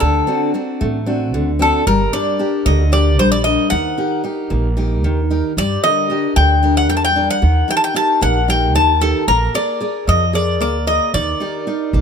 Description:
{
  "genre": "greek folk, Greek bouzouki band",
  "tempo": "226 BPM (eighths)",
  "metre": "7/8",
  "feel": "straight",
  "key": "unclear",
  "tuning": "A4 = 441 Hz",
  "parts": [
    { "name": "Greek bouzouki", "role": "melody", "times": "0.0-12.0 s", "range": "A4 to A5", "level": "-17 LUFS", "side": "left 2 dB", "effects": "none" },
    { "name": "picked steel-string acoustic guitar", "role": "accompaniment", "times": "0.0-12.0 s", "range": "D3 to D5", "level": "-19 LUFS", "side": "equal", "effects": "none" },
    { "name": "upright bass", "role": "bass", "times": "0.0-12.0 s", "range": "G1 to G2", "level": "-17 LUFS", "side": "right 1 dB", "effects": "none" }
  ],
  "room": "little or no reverb",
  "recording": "close, detailed microphones",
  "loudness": "-14 LUFS",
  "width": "side -7 dB against mid",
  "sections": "0.0-12.0 A section",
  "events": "none",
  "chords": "0.0 D7; 1.9 Gm; 3.7 Eb; 5.6 Gm; 7.4 Eb; 9.3 Bb7; 11.1 Eb"
}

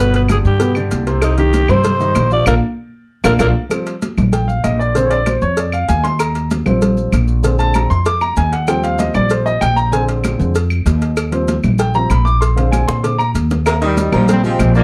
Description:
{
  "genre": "latin, salsa",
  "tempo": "193 BPM",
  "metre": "4/4",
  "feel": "straight",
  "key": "Eb major",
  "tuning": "A4 = 441 Hz",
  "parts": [
    { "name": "growling alto saxophone", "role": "melody", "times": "0.0-3.5 s", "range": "Eb4 to D5", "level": "-20 LUFS", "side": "equal", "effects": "none" },
    { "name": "dark baby grand piano", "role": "accompaniment", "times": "0.0-14.8 s", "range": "B2 to Eb6", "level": "-20 LUFS", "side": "equal", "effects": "none" },
    { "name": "upright bass", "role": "bass", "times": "0.0-14.8 s", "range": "G1 to Bb2", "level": "-18 LUFS", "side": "equal", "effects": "none" },
    { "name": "maracas", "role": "percussion", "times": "0.0-14.8 s", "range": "none", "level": "-37 LUFS", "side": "equal", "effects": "none" },
    { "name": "congas", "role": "percussion", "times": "0.1-14.8 s", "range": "none", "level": "-23 LUFS", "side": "equal", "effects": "none" },
    { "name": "cowbell and bongos", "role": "percussion", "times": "0.1-14.8 s", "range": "none", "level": "-26 LUFS", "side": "equal", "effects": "none" },
    { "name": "claves", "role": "percussion", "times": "0.3-14.8 s", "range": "none", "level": "-30 LUFS", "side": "equal", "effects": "none" },
    { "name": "clear saxophone section", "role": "second line", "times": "13.7-14.8 s", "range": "C3 to F3", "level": "-26 LUFS", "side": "equal", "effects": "none" },
    { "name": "bright trombone section", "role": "melody", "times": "13.8-14.8 s", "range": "Eb3 to C4", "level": "-20 LUFS", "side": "equal", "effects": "none" }
  ],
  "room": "light reverb",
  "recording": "dark, warm production",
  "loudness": "-15 LUFS",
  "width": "mono",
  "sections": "0.0-3.7 A section; 3.7-13.7 B section; 13.7-14.8 C section",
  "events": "band accent 2.5-3.7; drum fill 2.8-3.7, 12.9-13.7; grand piano solo 3.7-13.7",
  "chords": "0.0 G; 1.2 Cm; 2.5 Bb; 3.7 Bb69; 5.0 Bb7; 6.2 Eb69; 7.4 Bb7; 8.7 Eb69; 9.9 Bb7; 11.2 Eb69; 12.4 Bb7; 13.7 Eb69"
}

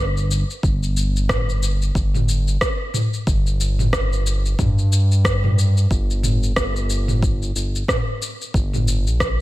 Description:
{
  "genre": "organic downtempo",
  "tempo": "91 BPM",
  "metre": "4/4",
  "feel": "swing 58% on 16ths",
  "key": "G minor pentatonic",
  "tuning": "A4 = 438 Hz",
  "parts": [
    { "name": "smooth synth bass", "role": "bass", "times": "0.0-9.4 s", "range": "G1 to G2", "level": "-19 LUFS", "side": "equal", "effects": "none" },
    { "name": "afro-pop drum kit", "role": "drums", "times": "0.2-9.4 s", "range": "rim click, shaker, toms", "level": "-23 LUFS", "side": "equal", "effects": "overdrive" },
    { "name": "electronic kick drum", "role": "drums", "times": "0.6-9.4 s", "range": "none", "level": "-22 LUFS", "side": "equal", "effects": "overdrive" }
  ],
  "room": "light reverb",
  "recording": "none",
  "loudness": "-17 LUFS",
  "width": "side -17 dB against mid",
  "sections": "0.0-9.4 A section",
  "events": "none",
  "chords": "none"
}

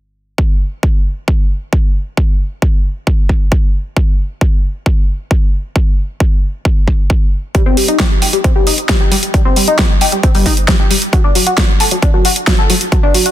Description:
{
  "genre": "uplifting trance",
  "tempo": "134 BPM",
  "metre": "4/4",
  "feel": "straight",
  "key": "unclear",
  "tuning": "A4 = 437 Hz",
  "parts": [
    { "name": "electronic kick drum", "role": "drums", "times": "0.4-13.0 s", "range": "none", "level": "-12 LUFS", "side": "equal", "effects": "overdrive" },
    { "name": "tight sequenced synth", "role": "arpeggios", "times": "7.5-13.3 s", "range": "F#3 to A4", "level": "-15 LUFS", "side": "left 2 dB", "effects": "chorus, phaser, sidechain pumping, tape echo" },
    { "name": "big-room dance drum kit", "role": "drums", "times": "7.5-13.3 s", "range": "hi-hat, snare drum", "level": "-15 LUFS", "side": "right 1 dB", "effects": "overdrive" }
  ],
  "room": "little or no reverb",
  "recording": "dense, heavily limited modern master",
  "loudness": "-11 LUFS",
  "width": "side -13 dB against mid",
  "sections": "0.4-13.3 A section",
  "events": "none",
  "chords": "none"
}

